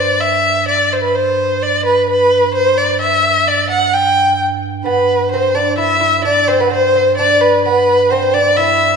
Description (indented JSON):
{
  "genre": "medieval dance",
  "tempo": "129 BPM",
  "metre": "3/4",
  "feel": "straight",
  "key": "G major",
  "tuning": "A4 = 440 Hz",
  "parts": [
    { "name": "warm violin", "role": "melody", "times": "0.0-9.0 s", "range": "B4 to G5", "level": "-12 LUFS", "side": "left 1 dB", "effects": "none" },
    { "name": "pipe organ, stopped flute", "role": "drone", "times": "0.0-9.0 s", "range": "G2", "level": "-24 LUFS", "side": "right 8 dB", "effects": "none" },
    { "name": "lute", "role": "second line", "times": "4.9-9.0 s", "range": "B3 to E4", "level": "-17 LUFS", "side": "equal", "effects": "none" }
  ],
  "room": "wet scoring stage reverb, RT60 2.1 s",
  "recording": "nothing above 11.0 kHz",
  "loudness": "-11 LUFS",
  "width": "side -5 dB against mid",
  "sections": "0.0-4.9 A section; 4.9-9.0 A section",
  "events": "none",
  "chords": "none"
}